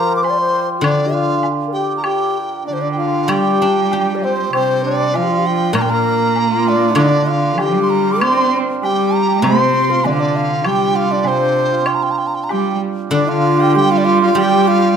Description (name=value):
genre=chinese traditional, Chinese chamber ensemble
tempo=98 BPM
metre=2/4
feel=rubato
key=G yu mode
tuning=A4 = 439 Hz
part: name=mellow hollow large dizi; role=melody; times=0.0-15.0 s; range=C5 to D6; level=-19 LUFS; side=left 1 dB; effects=none
part: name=breathy bright low xiao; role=second line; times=0.0-15.0 s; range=D4 to D5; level=-20 LUFS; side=left 8 dB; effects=none
part: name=hammered dulcimer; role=second line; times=0.0-15.0 s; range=C4 to D5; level=-20 LUFS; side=right 6 dB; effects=none
part: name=guzheng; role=accompaniment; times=0.0-15.0 s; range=Bb2 to G4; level=-21 LUFS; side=left 3 dB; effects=none
part: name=woodblock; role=percussion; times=0.2-12.6 s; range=none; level=-26 LUFS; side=left 3 dB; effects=none
part: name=rich cello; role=second line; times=2.7-15.0 s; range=C3 to C4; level=-19 LUFS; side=right 6 dB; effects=none
room=moderate recital hall reverb, RT60 1.6 s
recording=none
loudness=-13 LUFS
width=side -7 dB against mid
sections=0.0-3.3 A section; 3.3-13.1 B section; 13.1-15.0 C section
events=none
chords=none